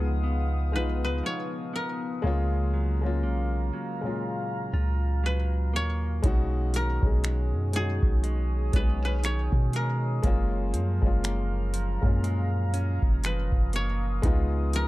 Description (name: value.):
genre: contemporary R&B.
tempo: 60 BPM.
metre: 4/4.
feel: swing 58% on 16ths.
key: F# major.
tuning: A4 = 443 Hz.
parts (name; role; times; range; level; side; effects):
koto; melody; 0.0-14.9 s; G#4 to C#5; -34 LUFS; left 1 dB; slapback echo, plate reverb.
warm grand piano; accompaniment; 0.0-14.9 s; A#2 to G#4; -34 LUFS; left 3 dB; plate reverb.
deep dark ambient pad; sustained chords; 0.0-14.9 s; B3 to E#6; -38 LUFS; left 2 dB; chorus, built-in reverb, plate reverb.
direct-recorded clean electric guitar; arpeggios; 0.0-14.9 s; F#2 to E#4; -36 LUFS; right 4 dB; slapback echo.
long sustained 808-style bass; bass; 0.0-14.9 s; F#1 to B2; -26 LUFS; equal; none.
booming analog drum machine; drums; 6.2-14.9 s; finger snaps, hi-hat, kick drum; -25 LUFS; equal; none.
room: light reverb.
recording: dark, warm production.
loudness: -24 LUFS.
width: side -18 dB against mid.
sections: 0.0-14.9 A section.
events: none.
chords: 0.0 C#9; 2.2 F#maj7; 14.2 C#9.